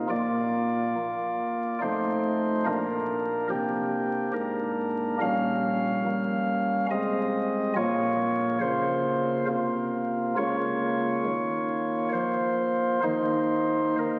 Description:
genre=classical, chorale-style piece for pipe organ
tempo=70 BPM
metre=3/4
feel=uneven beats, rubato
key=unclear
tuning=A4 = 441 Hz
part: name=chamber organ, flutes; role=solo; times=0.0-14.2 s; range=F1 to F5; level=-27 LUFS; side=equal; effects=none
room=wet church reverb, RT60 2.7 s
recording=very old 78 rpm record, vinyl crackle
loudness=-27 LUFS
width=mono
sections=0.0-14.2 A section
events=none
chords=0.1 Bb; 1.8 F7; 2.7 Bb; 5.2 Bbm6; 6.9 Ab/C; 7.8 Bbm; 10.4 Bbm/Db; 13.0 Eb5

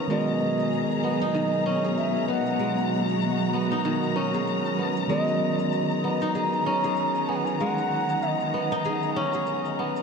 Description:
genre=organic downtempo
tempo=96 BPM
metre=4/4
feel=swing 58% on 16ths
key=G# minor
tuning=A4 = 439 Hz
part: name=mellow tine electric piano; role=accompaniment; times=0.0-10.0 s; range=D#3 to A#4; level=-30 LUFS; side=right 2 dB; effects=low-pass filter, diffuse ambient delay
part: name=dark studio string section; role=sustained chords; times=0.0-10.0 s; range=B2 to A#5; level=-28 LUFS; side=equal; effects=none
part: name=kora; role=arpeggios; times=0.0-10.0 s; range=D#3 to G#4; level=-29 LUFS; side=left 1 dB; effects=low-pass filter, diffuse ambient delay
part: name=mellow bansuri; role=melody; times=0.1-8.9 s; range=D#5 to A#5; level=-28 LUFS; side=right 1 dB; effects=diffuse ambient delay
part: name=cabasa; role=drums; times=0.1-10.0 s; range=none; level=-60 LUFS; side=right 7 dB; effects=none
room=wet huge ambient reverb, RT60 8.4 s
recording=dreamy mix soaked in reverb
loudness=-23 LUFS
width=side -5 dB against mid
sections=0.0-10.0 A section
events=none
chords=0.1 G#m9/B; 5.1 Bmaj7

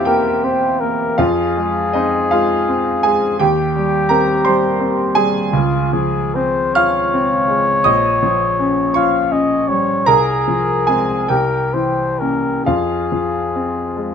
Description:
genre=classical, romantic duo for trumpet and grand piano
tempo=43-58 BPM (dotted quarters)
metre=6/8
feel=rubato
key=F minor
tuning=A4 = 439 Hz
part: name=mellow trumpet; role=melody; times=0.0-14.1 s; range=F4 to F5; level=-18 LUFS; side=left 2 dB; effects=none
part: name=bright grand piano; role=accompaniment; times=0.0-14.1 s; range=Bb1 to F6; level=-16 LUFS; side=right 1 dB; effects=none
room=light reverb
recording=close, detailed microphones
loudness=-14 LUFS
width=side -7 dB against mid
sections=0.0-14.1 A section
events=none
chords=0.0 C7/E; 1.2 Fm; 3.4 Cm/Eb; 5.5 Dbmaj7; 7.8 Gm7b5/Bb; 10.1 Fm/C; 11.3 C7b9; 12.7 Fm

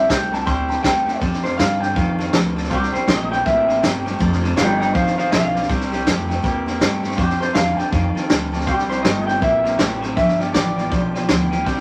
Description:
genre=rockabilly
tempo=161 BPM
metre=4/4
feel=swing 62% on 8ths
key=C major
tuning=A4 = 440 Hz
part: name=electric guitar through a small old amp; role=melody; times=0.0-11.6 s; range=G4 to C6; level=-23 LUFS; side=equal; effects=none
part: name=picked steel-string acoustic guitar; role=accompaniment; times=0.0-11.8 s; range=G2 to A4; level=-27 LUFS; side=equal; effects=none
part: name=electric guitar through a small old amp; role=riff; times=0.0-11.8 s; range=F2 to Bb3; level=-28 LUFS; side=equal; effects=none
part: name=upright bass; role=bass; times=0.1-11.8 s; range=F1 to G2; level=-28 LUFS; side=equal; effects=none
part: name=vintage drum kit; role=drums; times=0.1-11.8 s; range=hi-hat, kick drum, snare drum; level=-24 LUFS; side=equal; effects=none
room=moderate studio reverb, RT60 0.5 s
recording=vinyl crackle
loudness=-19 LUFS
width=mono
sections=0.0-1.2 A section; 1.2-11.8 B section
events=none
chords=0.0 C; 1.2 F; 2.7 C; 4.2 F; 5.7 C; 7.2 F; 8.7 C; 10.2 G7

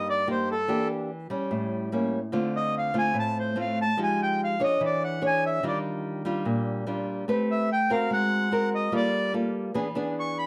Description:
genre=bossa nova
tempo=146 BPM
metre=4/4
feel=straight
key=unclear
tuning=A4 = 437 Hz
part: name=accordion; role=melody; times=0.0-10.5 s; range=A4 to C#6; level=-29 LUFS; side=equal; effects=none
part: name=nylon-string guitar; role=accompaniment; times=0.0-10.5 s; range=G2 to C#5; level=-29 LUFS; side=equal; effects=none
room=moderate studio reverb, RT60 0.7 s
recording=none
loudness=-27 LUFS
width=mono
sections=0.0-10.5 A section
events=accordion solo 0.0-10.5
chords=0.0 Cm7; 0.7 Em7b5; 1.5 A7b9; 2.3 Dm7; 4.0 Fm9; 4.8 E6; 5.6 Ebmaj9; 7.3 Am9; 8.1 Ab9; 8.9 Gm9; 9.7 E7

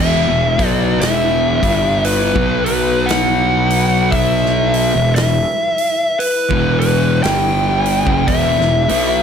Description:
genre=stoner and doom metal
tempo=58 BPM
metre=4/4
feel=swing 59% on 8ths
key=E minor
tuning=A4 = 440 Hz
part: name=fuzz lead guitar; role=melody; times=0.0-9.2 s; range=B4 to G5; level=-17 LUFS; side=left 1 dB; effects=distortion, slapback echo
part: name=ensemble organ-string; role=sustained chords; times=0.0-9.2 s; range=B3 to E5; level=-28 LUFS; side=equal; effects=none
part: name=thick fuzz guitar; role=riff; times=0.0-9.2 s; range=E2 to B3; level=-19 LUFS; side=left 10 dB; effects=distortion
part: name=thick fuzz guitar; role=riff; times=0.0-9.2 s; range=E2 to B3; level=-20 LUFS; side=right 9 dB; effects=distortion
part: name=fuzz fingered electric bass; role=bass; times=0.0-9.2 s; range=E1 to B1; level=-21 LUFS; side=right 1 dB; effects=overdrive
part: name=big rock drum kit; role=drums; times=0.6-9.1 s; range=hi-hat, kick drum, snare drum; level=-22 LUFS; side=right 1 dB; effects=none
room=light reverb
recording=none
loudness=-13 LUFS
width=side -7 dB against mid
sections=0.0-9.2 A section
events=none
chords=0.0 Em; 2.3 B5; 4.9 Em

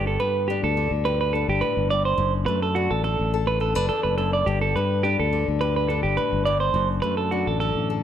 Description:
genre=highlife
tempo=105 BPM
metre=4/4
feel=swing 53% on 16ths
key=G major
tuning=A4 = 440 Hz
part: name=nylon-string guitar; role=accompaniment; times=0.0-8.0 s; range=E2 to A4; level=-28 LUFS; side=left 12 dB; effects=none
part: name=clean electric guitar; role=arpeggios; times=0.0-7.9 s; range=F#4 to D5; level=-24 LUFS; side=right 4 dB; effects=spring reverb, slapback echo
part: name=fingered electric bass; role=bass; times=0.0-8.0 s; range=F#1 to G2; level=-25 LUFS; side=left 1 dB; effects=none
room=light reverb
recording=none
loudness=-20 LUFS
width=side -10 dB against mid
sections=0.0-8.0 A section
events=none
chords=0.0 G; 2.2 D/F#; 4.5 G; 6.8 D/F#

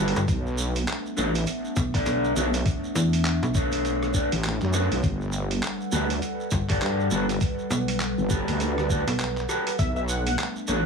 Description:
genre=glitch hop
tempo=101 BPM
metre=4/4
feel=swing 60% on 16ths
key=B minor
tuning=A4 = 440 Hz
part: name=warbly tape-like pad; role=sustained chords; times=0.0-10.9 s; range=G3 to F#5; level=-31 LUFS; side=equal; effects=chorus, built-in reverb, sidechain pumping
part: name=electric guitar at the edge of break-up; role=stabs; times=0.0-10.8 s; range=D4 to D5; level=-29 LUFS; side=left 1 dB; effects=sidechain pumping, dub echo
part: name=wobble bass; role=bass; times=0.0-10.9 s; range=G1 to F#2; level=-26 LUFS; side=equal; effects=chorus, overdrive
part: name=boom bap sampler-style drum kit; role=drums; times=0.1-10.5 s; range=handclaps, hi-hat, rim click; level=-32 LUFS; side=right 2 dB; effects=none
part: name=slap-like FM bass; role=bass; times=0.2-9.5 s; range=G1 to G2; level=-26 LUFS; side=left 1 dB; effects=tube saturation
part: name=shekere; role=percussion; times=0.2-10.8 s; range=none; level=-36 LUFS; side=right 5 dB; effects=none
part: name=electronic kick drum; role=drums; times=0.3-9.9 s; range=none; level=-26 LUFS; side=left 1 dB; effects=none
part: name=plucky unison lead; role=melody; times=9.8-10.4 s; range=E5 to F#5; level=-31 LUFS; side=left 2 dB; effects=dub echo
room=light reverb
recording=studio ambience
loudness=-23 LUFS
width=side -5 dB against mid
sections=0.0-10.9 A section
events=none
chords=0.3 Bm9; 5.0 Gmaj9; 9.8 Bm9

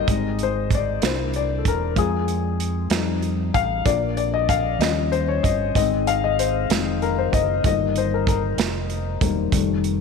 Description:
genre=slow gospel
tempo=64 BPM (dotted quarters)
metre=6/8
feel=straight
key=Eb major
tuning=A4 = 439 Hz
part: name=dark grand piano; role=accompaniment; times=0.0-10.0 s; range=Eb3 to F5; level=-22 LUFS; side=left 10 dB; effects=none
part: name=deep dub fingered electric bass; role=bass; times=0.0-10.0 s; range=E1 to F2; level=-26 LUFS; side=right 2 dB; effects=none
part: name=natural country drum kit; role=drums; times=0.1-10.0 s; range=hi-hat, kick drum, snare drum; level=-24 LUFS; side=right 5 dB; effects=none
room=light reverb, small room ambience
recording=1960s-style stereo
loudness=-19 LUFS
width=side -5 dB against mid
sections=0.0-10.0 A section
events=grand piano solo 0.0-10.0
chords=0.1 Ab; 1.0 C7; 2.0 Fm; 2.9 F7; 3.9 Bb; 4.8 Eb7; 5.7 Ab; 7.6 Eb/G

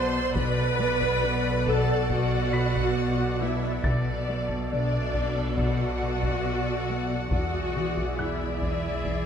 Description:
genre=cinematic, suspense film score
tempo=69 BPM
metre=4/4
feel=straight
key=B minor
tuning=A4 = 440 Hz
part: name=dark studio violin section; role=melody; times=0.0-9.3 s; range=D5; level=-34 LUFS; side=left 3 dB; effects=none
part: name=rich studio violin section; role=second line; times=0.0-9.3 s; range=D5 to C6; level=-36 LUFS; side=left 1 dB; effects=none
part: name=clear studio viola section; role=accompaniment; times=0.0-9.3 s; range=D4 to C5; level=-29 LUFS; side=equal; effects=none
part: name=bubbling stepped-filter texture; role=sustained chords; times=0.0-9.3 s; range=G#4 to F#5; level=-37 LUFS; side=left 2 dB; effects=chorus, built-in reverb
part: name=smooth gliding synth bass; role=riff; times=0.0-9.3 s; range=E2 to B3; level=-32 LUFS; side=left 4 dB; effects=none
part: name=rich studio cello section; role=bass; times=0.0-9.3 s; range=E2 to B2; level=-33 LUFS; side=right 3 dB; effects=none
part: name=rich studio double bass section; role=bass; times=0.0-9.3 s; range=E1 to B1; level=-32 LUFS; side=right 4 dB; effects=none
part: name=punchy sub bass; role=drone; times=0.0-9.3 s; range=B1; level=-36 LUFS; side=left 1 dB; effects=none
part: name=warm concert grand piano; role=texture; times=0.0-9.3 s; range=B5 to B6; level=-39 LUFS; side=left 1 dB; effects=none
part: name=warm symphonic violin section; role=texture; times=0.0-3.4 s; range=F#6 to A6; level=-39 LUFS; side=left 2 dB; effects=none
part: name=solo taiko drums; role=drums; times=0.4-9.3 s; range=none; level=-33 LUFS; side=equal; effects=none
room=moderate scoring stage reverb, RT60 1.6 s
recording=faint mains hum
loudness=-24 LUFS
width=side -8 dB against mid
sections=0.0-9.3 A section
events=none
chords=0.0 Bm7; 3.8 Dadd9/B; 7.3 E7

